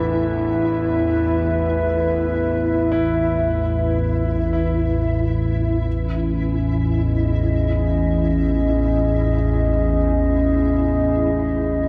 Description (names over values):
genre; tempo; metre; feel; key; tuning
ambient; free time; none; none; unclear; A4 = 441 Hz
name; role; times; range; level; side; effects
dark analog pad; sustained chords; 0.0-11.9 s; C#4 to E5; -23 LUFS; equal; subtle chorus
clear concert grand piano; arpeggios; 0.0-11.9 s; D3 to E4; -33 LUFS; equal; delay
analog drone; drone; 0.0-11.9 s; A1 to E2; -23 LUFS; equal; chorus
flickering grainy texture; texture; 0.0-11.9 s; E4; -33 LUFS; equal; built-in reverb, ensemble chorus
room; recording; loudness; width
moderate huge ambient reverb, RT60 8.4 s; dreamy mix soaked in reverb; -20 LUFS; mono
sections
0.0-11.9 A section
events
none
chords
0.0 E5; 5.9 C#m